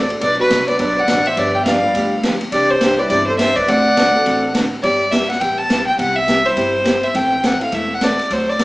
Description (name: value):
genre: country, western swing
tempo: 208 BPM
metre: 4/4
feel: swing 61% on 8ths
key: G major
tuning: A4 = 440 Hz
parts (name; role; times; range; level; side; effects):
- rich fiddle; melody; 0.0-8.6 s; B4 to A5; -16 LUFS; equal; none
- breathy clarinet; second line; 0.0-4.6 s; F#4 to E5; -21 LUFS; equal; none
- dark upright piano; accompaniment; 0.0-8.0 s; F#3 to B4; -28 LUFS; left 1 dB; none
- picked acoustic archtop guitar; accompaniment; 0.0-8.6 s; B2 to A4; -22 LUFS; equal; none
- upright bass; bass; 0.0-8.6 s; E1 to D2; -28 LUFS; equal; none
- swinging big-band drum kit; drums; 0.1-8.6 s; hi-hat, kick drum, ride cymbal, snare drum; -22 LUFS; equal; none
room: wet large studio reverb, RT60 1.1 s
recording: band playing live in one room, small speaker sound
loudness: -14 LUFS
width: side -20 dB against mid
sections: 0.0-4.8 A section; 4.8-8.6 B section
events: none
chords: 0.2 Bm; 1.4 G7; 2.5 Cadd9; 3.7 D7; 4.8 G6; 6.0 Cmaj7; 7.1 Am